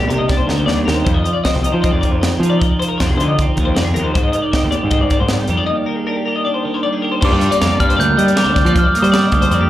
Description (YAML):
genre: math rock and midwest emo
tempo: 156 BPM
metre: 4/4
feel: straight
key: unclear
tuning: A4 = 438 Hz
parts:
  - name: twelve-string electric guitar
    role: accompaniment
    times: 0.0-9.7 s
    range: Eb2 to G4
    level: -21 LUFS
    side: right 4 dB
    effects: none
  - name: twelve-string electric guitar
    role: arpeggios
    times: 0.0-9.7 s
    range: G4 to F5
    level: -21 LUFS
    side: left 5 dB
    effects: lush chorus
  - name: fuzz picked electric bass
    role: bass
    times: 0.0-9.7 s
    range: Bb1 to G3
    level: -17 LUFS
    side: equal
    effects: overdrive
  - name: crisp fusion drum kit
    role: drums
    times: 0.1-9.6 s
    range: crash cymbal, hi-hat, kick drum, snare drum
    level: -19 LUFS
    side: equal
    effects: none
  - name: glockenspiel with soft plastic mallets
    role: melody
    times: 7.2-9.7 s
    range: D6 to G6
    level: -17 LUFS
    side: right 1 dB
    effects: slapback echo
room: small room ambience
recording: live gig heard through the venue's PA, club reverb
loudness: -13 LUFS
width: side -13 dB against mid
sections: 0.0-7.2 A section; 7.2-9.7 B section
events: drum fill 0.3-1.1; break 5.7-7.2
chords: 0.0 Ebmaj7; 1.1 Fm7; 4.2 Abmaj7; 5.7 Ebmaj7; 7.2 Gm7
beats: 0.30 0.69 | 1.07 1.46 1.84 2.23 | 2.62 3.00 3.38 3.77 | 4.16 4.54 4.92 5.31 | 5.69 6.08 6.46 6.84 | 7.23 7.61 7.99 8.37 | 8.75 9.14 9.52